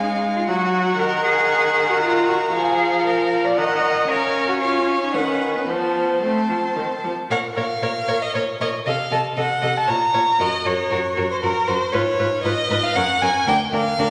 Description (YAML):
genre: quick classical-period movement for string quartet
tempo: 117 BPM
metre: 3/4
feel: rubato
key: Bb minor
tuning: A4 = 436 Hz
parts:
  - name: clear violin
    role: melody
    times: 0.0-14.1 s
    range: Bb4 to Bb5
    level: -25 LUFS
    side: equal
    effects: none
  - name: rich violin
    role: second line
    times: 0.0-14.1 s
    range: Bb4 to Gb5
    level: -28 LUFS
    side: equal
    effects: none
  - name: rich viola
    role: accompaniment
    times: 0.0-14.1 s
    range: Eb3 to Bb4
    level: -26 LUFS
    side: equal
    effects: none
  - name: rich cello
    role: bass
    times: 0.0-14.1 s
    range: D2 to Eb5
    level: -26 LUFS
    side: equal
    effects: none
room: wet scoring stage reverb, RT60 1.6 s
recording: none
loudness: -20 LUFS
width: mono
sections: 0.0-7.3 A section; 7.3-14.1 A section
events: none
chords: 0.5 Gb; 1.0 Ebm; 2.5 Bb7(no3)/F; 3.6 Ebm; 4.1 Bbm/Db; 5.1 B/D#; 5.7 F; 7.3 Bbm; 8.9 Cdim7; 9.9 Bb5; 10.4 Gb; 11.9 Db7/Ab; 13.0 Gb; 13.5 Bb/D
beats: 0.48 | 0.99 1.51 2.02 | 2.54 3.05 3.57 | 4.09 4.61 5.14 | 5.68 6.22 6.76 | 7.30 7.83 8.35 | 8.86 9.38 9.89 | 10.40 10.91 11.42 | 11.93 12.44 12.96 | 13.47 13.98